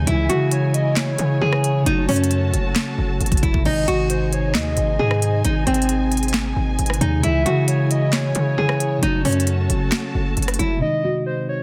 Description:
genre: hip hop, trap.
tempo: 134 BPM.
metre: 4/4.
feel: half-time.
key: C# harmonic minor.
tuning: A4 = 438 Hz.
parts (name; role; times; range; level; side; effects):
nylon-string guitar; melody; 0.0-11.6 s; B#3 to G#4; -26 LUFS; equal; low-pass filter, delay.
muted felt-like synth keys; accompaniment; 0.0-11.6 s; B#2 to F#4; -28 LUFS; equal; chorus, low-pass filter.
muted symphonic string section; sustained chords; 0.0-11.6 s; B#3 to A5; -34 LUFS; equal; low-pass filter.
distorted 808-style bass; bass; 0.0-10.8 s; F#1 to C#3; -24 LUFS; equal; distortion.
hollow clarinet-like synth lead; second line; 0.1-11.6 s; B#4 to E5; -28 LUFS; equal; chorus, delay.
trap drum kit; drums; 0.1-10.7 s; crash cymbal, handclaps, hi-hat, kick drum, rim click, snare drum; -26 LUFS; equal; overdrive.
room: light reverb, digital ambience.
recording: dense, heavily limited modern master.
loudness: -20 LUFS.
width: mono.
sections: 0.0-10.8 A section.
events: drum fill 3.2-3.7.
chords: 0.1 C#m; 1.9 F#m; 3.7 G#; 7.2 C#m; 9.0 F#m; 10.8 G#.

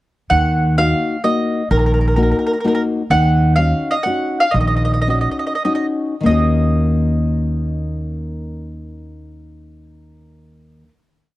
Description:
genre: italian folk, Italian serenade.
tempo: 92-130 BPM.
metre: 3/4.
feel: swing 53% on 8ths.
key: Eb minor.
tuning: A4 = 439 Hz.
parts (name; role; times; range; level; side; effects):
mandolin; melody; 0.3-10.9 s; Bb4 to Gb5; -19 LUFS; right 1 dB; none.
nylon-string guitar; accompaniment; 0.3-10.9 s; Eb3 to Bb4; -20 LUFS; left 2 dB; none.
upright bass; bass; 0.3-10.9 s; Bb1 to Eb2; -18 LUFS; right 1 dB; none.
room: little or no reverb.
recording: dry, close 1970s-style studio recording.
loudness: -14 LUFS.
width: side -17 dB against mid.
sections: 0.3-6.3 A section; 6.3-10.1 final chord.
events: slowing down 3.1-6.3.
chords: 0.3 Ebm; 3.1 Ebm7.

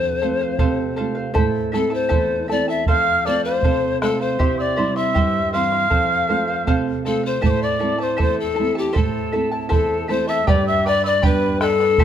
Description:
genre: andean folk, Andean ensemble.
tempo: 79 BPM.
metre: 2/4.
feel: straight.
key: A minor.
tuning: A4 = 436 Hz.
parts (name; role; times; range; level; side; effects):
polished pan flute; melody; 0.0-12.0 s; G4 to F5; -20 LUFS; left 5 dB; none.
charango; accompaniment; 0.0-12.0 s; E4 to C6; -25 LUFS; equal; none.
nylon-string guitar; accompaniment; 0.0-12.0 s; E2 to F4; -24 LUFS; right 5 dB; none.
bombo; percussion; 0.6-12.0 s; none; -22 LUFS; right 2 dB; none.
mellow quena; second line; 2.9-12.0 s; G5 to F6; -26 LUFS; right 5 dB; none.
room: moderate recital hall reverb, RT60 1.5 s.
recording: close, detailed microphones.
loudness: -17 LUFS.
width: side -9 dB against mid.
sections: 0.0-10.5 A section; 10.5-12.0 B section.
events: none.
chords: 0.0 F; 1.4 Am; 2.9 F; 4.4 C; 5.9 F; 7.4 Am; 10.5 G.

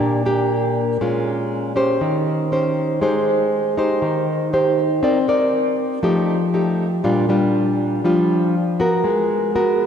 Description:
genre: bossa nova.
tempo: 120 BPM.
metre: 4/4.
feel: straight.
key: unclear.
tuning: A4 = 440 Hz.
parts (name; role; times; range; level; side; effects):
nylon-string guitar; solo; 0.0-9.9 s; Bb2 to D5; -16 LUFS; equal; diffuse ambient delay.
room: wet lush hall reverb, RT60 3.0 s.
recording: dreamy mix soaked in reverb.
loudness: -16 LUFS.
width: side -8 dB against mid.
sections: 0.0-9.9 A section.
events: none.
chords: 0.0 Ebmaj7 (rootless); 1.0 Bbm7; 2.0 Eb6; 3.0 Abmaj7; 5.0 Cm9; 6.0 F9; 7.0 Bb6; 9.0 Abm9.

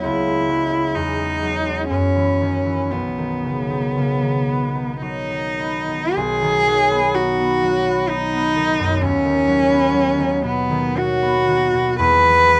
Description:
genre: classical, romantic duo for cello and harp.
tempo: 49-66 BPM.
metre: 3/4.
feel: rubato.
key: B major.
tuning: A4 = 440 Hz.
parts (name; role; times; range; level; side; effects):
warm cello; melody; 0.0-12.6 s; B3 to B4; -20 LUFS; equal; none.
concert harp; accompaniment; 0.0-12.6 s; B1 to D#4; -24 LUFS; equal; none.
room: light reverb.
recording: none.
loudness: -19 LUFS.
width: mono.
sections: 0.0-6.2 A section; 6.2-12.6 B section.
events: none.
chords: 0.0 C#m7; 0.9 Emaj9; 1.9 F#5; 2.9 B; 9.0 B/D#; 12.0 E.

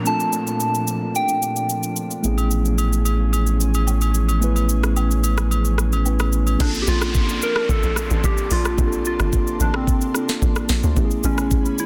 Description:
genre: amapiano.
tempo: 110 BPM.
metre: 4/4.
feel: straight.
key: unclear.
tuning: A4 = 440 Hz.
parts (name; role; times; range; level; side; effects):
soft struck synth lead; melody; 0.0-2.0, 6.6-11.9 s; C4 to A5; -26 LUFS; equal; chorus, digital delay.
mellow tine electric piano; accompaniment; 0.0-11.9 s; A3 to B4; -28 LUFS; equal; none.
ethereal airy pad; sustained chords; 0.0-11.9 s; Bb2 to C6; -33 LUFS; equal; ensemble chorus, built-in reverb, sidechain pumping.
downlifter; sound effects; 0.0-2.2, 6.6-11.0 s; none; -35 LUFS; equal; none.
smooth R&B drum kit; drums; 0.1-11.9 s; crash cymbal, hi-hat, kick drum, rim click, shaker, snare drum; -26 LUFS; equal; soft clipping on snare.
warm sub bass; bass; 2.2-6.6 s; A1; -21 LUFS; equal; none.
agogo bells and woodblock; percussion; 2.4-6.6 s; none; -32 LUFS; equal; none.
tight log drum bass; bass; 6.6-11.8 s; G1 to D2; -25 LUFS; equal; none.
room: little or no reverb.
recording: dense, heavily limited modern master.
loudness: -20 LUFS.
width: mono.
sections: 0.0-6.6 A section; 6.6-11.9 B section.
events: drop 6.6-11.9.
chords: 0.0 Bbmaj9; 2.2 Amaj9; 6.6 Bbmaj9; 11.0 Amaj9.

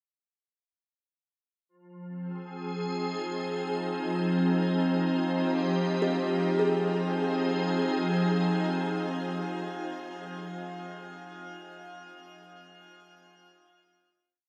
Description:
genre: ambient.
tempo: 73 BPM.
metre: 3/4.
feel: straight.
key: F minor.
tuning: A4 = 444 Hz.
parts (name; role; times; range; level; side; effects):
soft additive organ-like pad; sustained chords; 1.7-9.8 s; F3 to Ab4; -30 LUFS; equal; ensemble chorus, built-in reverb.
kalimba; arpeggios; 6.0-10.5 s; G4 to Ab4; -35 LUFS; equal; delay.
room: wet shimmer reverb, RT60 7.7 s.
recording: none.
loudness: -29 LUFS.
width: mono.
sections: 1.7-6.6 A section; 6.6-9.1 final chord.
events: none.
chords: 1.7 Fm7; 4.1 Cm/F; 6.6 Fm7.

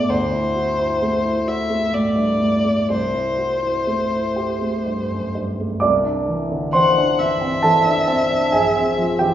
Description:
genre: classical, impressionist duo for violin and grand piano.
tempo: 60-68 BPM.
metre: 3/4.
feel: rubato.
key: C lydian.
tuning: A4 = 441 Hz.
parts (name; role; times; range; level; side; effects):
warm violin; melody; 0.0-9.3 s; C5 to F#5; -22 LUFS; left 1 dB; none.
warm baby grand piano; accompaniment; 0.0-9.3 s; Bb1 to D6; -18 LUFS; equal; none.
room: wet recital hall reverb, RT60 1.5 s.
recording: heard from further back in the room, nothing above 7.5 kHz.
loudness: -17 LUFS.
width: side -11 dB against mid.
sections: 0.0-5.8 A section; 5.8-9.3 B section.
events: none.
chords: 0.1 D9; 2.9 C6; 5.8 Cadd9; 8.5 Bbsus2.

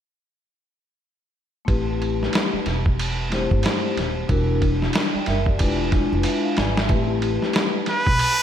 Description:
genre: hip hop, jazz-hop.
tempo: 92 BPM.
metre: 4/4.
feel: swing 61% on 16ths.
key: unclear.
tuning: A4 = 440 Hz.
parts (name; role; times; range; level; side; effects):
vibraphone with soft mallets; accompaniment; 1.6-7.8 s; G3 to G#5; -24 LUFS; left 3 dB; slapback echo.
upright bass; bass; 1.7-8.2 s; D#1 to B1; -25 LUFS; equal; none.
lo-fi sampler-style drum kit; drums; 1.7-8.4 s; hi-hat, kick drum, ride cymbal, snare drum; -22 LUFS; right 1 dB; none.
trumpet with straight mute; melody; 7.9-8.4 s; B4; -18 LUFS; right 1 dB; none.
room: moderate concert hall reverb, RT60 2.0 s.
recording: big arena sound.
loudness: -19 LUFS.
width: side -9 dB against mid.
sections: 1.7-6.9 A section; 6.9-8.4 B section.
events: drum fill 6.2-6.9.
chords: 1.7 Am9; 4.3 Em7b5; 5.6 E7b9; 6.9 Am9.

